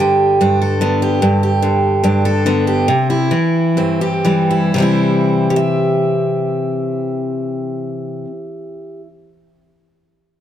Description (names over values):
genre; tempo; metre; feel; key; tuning
country; 118-148 BPM; 4/4; straight; C major; A4 = 443 Hz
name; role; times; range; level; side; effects
picked steel-string acoustic guitar; solo; 0.0-9.1 s; G2 to E5; -14 LUFS; equal; none
room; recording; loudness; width
moderate plate reverb, RT60 2.6 s; none; -13 LUFS; side -10 dB against mid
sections
0.0-4.7 A section; 4.7-8.8 B section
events
slowing down 1.2-4.7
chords
0.0 G; 2.9 C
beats
0.00 0.41 0.81 | 1.22 1.62 2.03 2.45 | 2.88 3.32 3.78 4.25 | 4.75 5.25 5.76 6.26 | 6.77 7.28 7.79 8.29